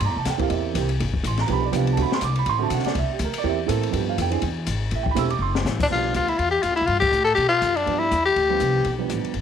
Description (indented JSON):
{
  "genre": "jazz, small-group swing and bop",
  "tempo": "244 BPM",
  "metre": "4/4",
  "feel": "swing 57% on 8ths",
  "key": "G mixolydian",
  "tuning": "A4 = 440 Hz",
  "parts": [
    { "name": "dark grand piano", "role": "accompaniment", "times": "0.0-9.3 s", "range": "D3 to E6", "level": "-25 LUFS", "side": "right 12 dB", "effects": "none" },
    { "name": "upright bass", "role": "bass", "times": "0.0-9.4 s", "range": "E1 to B2", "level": "-25 LUFS", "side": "left 1 dB", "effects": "none" },
    { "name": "open jazz drum kit", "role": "drums", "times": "0.0-9.4 s", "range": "crash cymbal, hi-hat, kick drum, ride cymbal, snare drum", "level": "-30 LUFS", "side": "left 5 dB", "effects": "none" },
    { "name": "growling tenor saxophone", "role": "melody", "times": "5.8-9.0 s", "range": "D4 to A4", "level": "-20 LUFS", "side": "left 3 dB", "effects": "none" }
  ],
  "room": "light reverb, small room ambience",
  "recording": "1960s-style stereo",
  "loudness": "-20 LUFS",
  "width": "side -8 dB against mid",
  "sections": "0.0-5.9 A section; 5.9-9.4 B section",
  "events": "drum fill 5.4; band accent 7.0",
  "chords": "0.0 C7; 1.0 G7; 2.0 D7; 3.0 C7; 3.9 G7; 4.4 E; 4.9 Am7; 5.4 F#dim; 5.9 G7"
}